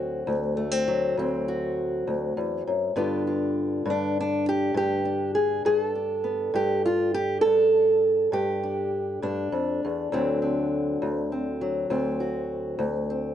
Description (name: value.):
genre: acoustic country blues, solo or duo.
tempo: 67 BPM (dotted quarters).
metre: 12/8.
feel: straight.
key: D mixolydian.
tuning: A4 = 440 Hz.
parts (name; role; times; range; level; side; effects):
fingerpicked old ladder-braced acoustic guitar; solo; 0.0-13.3 s; D2 to A4; -23 LUFS; equal; none.
room: moderate booth ambience, RT60 0.2 s.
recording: nothing above 10.3 kHz.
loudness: -23 LUFS.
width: side -10 dB against mid.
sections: 0.0-13.3 A section.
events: none.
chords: 0.0 D7; 3.0 G7; 10.1 D7.